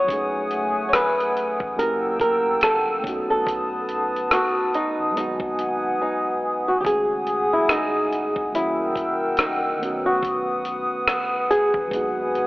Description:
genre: lo-fi hip hop.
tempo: 71 BPM.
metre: 4/4.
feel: swing 58% on 16ths.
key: F# dorian.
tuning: A4 = 440 Hz.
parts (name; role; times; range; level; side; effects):
flamenco guitar; melody; 0.0-12.5 s; D#4 to C#5; -23 LUFS; equal; low-pass filter.
reed electric piano; accompaniment; 0.0-12.5 s; D#3 to G#4; -31 LUFS; right 1 dB; cassette tape, low-pass filter.
hollow soft pad; sustained chords; 0.0-12.5 s; A3 to E6; -24 LUFS; equal; chorus, low-pass filter.
soft dub sub bass; bass; 0.1-12.5 s; F#1 to B1; -46 LUFS; equal; none.
dusty soul sampler-style drum kit; drums; 0.1-12.5 s; hi-hat, kick drum, rim click; -25 LUFS; equal; vintage 12-bit sampler grit.
room: wet lush hall reverb, RT60 3.0 s.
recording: dreamy mix soaked in reverb, telephone sound.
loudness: -20 LUFS.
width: side -19 dB against mid.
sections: 0.0-6.8 A section; 6.8-12.5 B section.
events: silent gap 6.0-6.8.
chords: 0.1 F#m69; 1.8 F#7b9; 3.0 B7; 5.2 G#m7; 6.8 F#m69; 8.5 F#7b9; 9.8 B7; 11.9 G#m7.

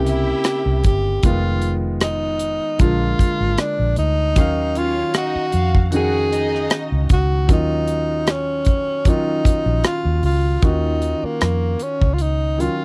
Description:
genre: lush 1970s-style soul.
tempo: 77 BPM.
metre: 4/4.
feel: swing 54% on 16ths.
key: Eb dorian.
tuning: A4 = 440 Hz.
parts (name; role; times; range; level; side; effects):
breathy tenor saxophone; melody; 0.0-12.8 s; Bb3 to Ab4; -24 LUFS; equal; none.
warm baby grand piano; accompaniment; 0.0-12.8 s; Db3 to F5; -27 LUFS; equal; none.
vintage muted fingered electric bass; bass; 0.0-12.7 s; F1 to F2; -23 LUFS; equal; none.
warm studio violin section; second line; 0.1-7.1 s; Db4 to Gb5; -32 LUFS; equal; none.
modern studio drum kit; drums; 0.1-12.8 s; hi-hat, kick drum, rim click; -20 LUFS; equal; none.
room: little or no reverb.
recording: dry, close 1970s-style studio recording.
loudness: -19 LUFS.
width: mono.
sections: 0.0-10.6 A section; 10.6-12.8 B section.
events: none.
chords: 0.0 C7b9; 1.2 Fm7b5; 2.8 Bb7; 4.4 Ebm9.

